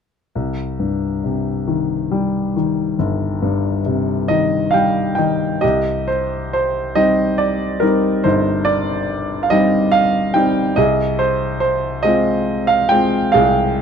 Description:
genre	classical, lyrical solo piano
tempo	46 BPM (dotted quarters)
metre	6/8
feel	rubato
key	C minor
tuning	A4 = 440 Hz
part	warm grand piano	solo	0.4-13.8 s	G1 to G5	-15 LUFS	equal	none
room	moderate small room reverb, RT60 0.5 s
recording	dark, warm production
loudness	-15 LUFS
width	side -7 dB against mid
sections	0.4-5.6 A section; 5.6-13.8 B section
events	grand piano fill 4.3-5.6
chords	0.4 Cm; 10.8 Fm/C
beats	| 0.35 1.69 | 3.00 4.29 | 5.63 6.96 | 8.24 9.51 | 10.77 12.05 | 13.35

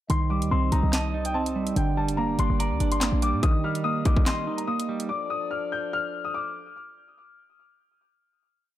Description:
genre	hip hop, drill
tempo	144 BPM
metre	4/4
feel	half-time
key	D phrygian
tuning	A4 = 440 Hz
part	dark baby grand piano	melody	0.1-6.7 s	G5 to G6	-30 LUFS	left 4 dB	digital delay
part	semi-hollow electric guitar	accompaniment	0.1-5.1 s	D3 to Eb5	-28 LUFS	right 5 dB	spring reverb
part	warm French horn section	sustained chords	0.1-6.7 s	F3 to Eb5	-35 LUFS	left 3 dB	none
part	short 808-style bass	bass	0.1-3.4 s	F1 to Bb2	-26 LUFS	equal	none
part	drill drum kit	drums	0.1-5.1 s	handclaps, hi-hat, kick drum, snare drum	-25 LUFS	equal	none
room	digital ambience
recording	dark, warm production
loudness	-23 LUFS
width	side -13 dB against mid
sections	0.1-6.8 hook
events	none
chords	0.1 Cm; 1.8 Gm; 3.4 Eb; 5.1 Dm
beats	| 0.10 0.51 0.93 1.35 | 1.76 2.18 2.60 3.01 | 3.43 3.85 4.26 4.68 | 5.10 5.51 5.93 6.35

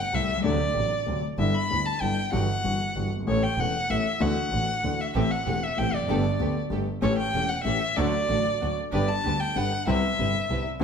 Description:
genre	tango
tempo	191 BPM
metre	3/4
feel	rubato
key	G major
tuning	A4 = 441 Hz
part	warm violin	second line	0.0-10.6 s	C#5 to B5	-27 LUFS	left 1 dB	none
part	warm concert grand piano	accompaniment	0.1-10.8 s	E1 to A4	-28 LUFS	left 3 dB	none
part	rich double bass	bass	0.1-10.8 s	E1 to D2	-30 LUFS	right 3 dB	none
part	warm chamber string section	stabs	5.1-10.8 s	B3 to B4	-34 LUFS	right 5 dB	none
room	wet large studio reverb, RT60 1.2 s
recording	none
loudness	-23 LUFS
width	side -6 dB against mid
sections	0.0-10.8 A section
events	violin solo 0.0-10.8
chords	0.4 D7; 1.4 G6; 2.3 Emadd9/G; 3.3 A; 4.2 Dadd9; 5.2 Am7; 6.1 Gadd9; 7.0 A7; 8.0 D; 8.9 G; 9.9 Cmaj7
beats	0.13 | 0.44 0.76 1.07 | 1.39 1.70 2.02 | 2.33 2.64 2.95 | 3.26 3.57 3.89 | 4.20 4.52 4.83 | 5.15 5.47 5.78 | 6.10 6.41 6.72 | 7.03 7.34 7.66 | 7.97 8.29 8.61 | 8.92 9.24 9.56 | 9.87 10.19 10.50 | 10.81

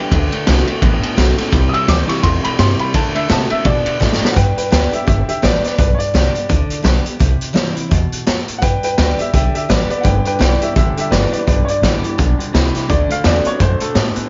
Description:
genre	rockabilly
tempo	169 BPM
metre	4/4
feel	swing 59% on 8ths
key	G major from 4.4 s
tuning	A4 = 441 Hz
part	clear upright piano	melody	0.0-14.3 s	G4 to E6	-22 LUFS	equal	plate reverb, analog delay
part	picked steel-string acoustic guitar	accompaniment	0.0-14.3 s	G2 to G4	-25 LUFS	equal	plate reverb
part	electric guitar through a small old amp	riff	0.0-4.3, 10.0-14.3 s	G2 to B3	-25 LUFS	equal	none
part	upright bass	bass	0.1-14.2 s	G1 to D3	-19 LUFS	equal	none
part	raw garage drum kit	drums	0.1-14.2 s	hi-hat, kick drum, ride cymbal, snare drum	-20 LUFS	equal	none
room	moderate studio reverb, RT60 0.8 s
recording	nothing above 7.5 kHz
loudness	-15 LUFS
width	mono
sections	0.0-4.4 A section; 4.4-14.3 B section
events	drum fill 4.0-4.4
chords	0.1 D7; 1.5 C; 2.9 D7; 4.4 G; 7.2 C; 8.6 G; 12.9 D7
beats	| 0.12 0.47 0.82 1.18 | 1.53 1.88 2.24 2.59 | 2.94 3.30 3.65 4.01 | 4.36 4.72 5.07 5.43 | 5.78 6.14 6.49 6.85 | 7.20 7.56 7.92 8.27 | 8.63 8.98 9.34 9.70 | 10.05 10.41 10.76 11.12 | 11.47 11.83 12.18 12.54 | 12.89 13.25 13.60 13.95

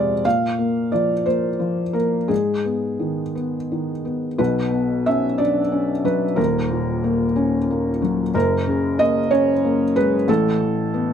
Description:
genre	neoclassical minimalist piano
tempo	57-63 BPM (dotted quarters)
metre	6/8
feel	rubato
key	unclear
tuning	A4 = 438 Hz
part	felt-muted upright piano	solo	0.0-11.1 s	D#1 to F5	-18 LUFS	equal	none
room	light reverb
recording	close, detailed microphones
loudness	-18 LUFS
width	side -8 dB against mid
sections	0.0-4.4 A section; 4.4-11.1 B section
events	none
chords	0.3 A#5; 2.3 G#m; 4.4 Bmadd9; 6.4 D#m7; 8.3 F#add9; 10.3 Asus2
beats	| 0.25 1.26 | 2.30 3.35 | 4.39 5.40 | 6.38 7.37 | 8.35 9.31 | 10.28

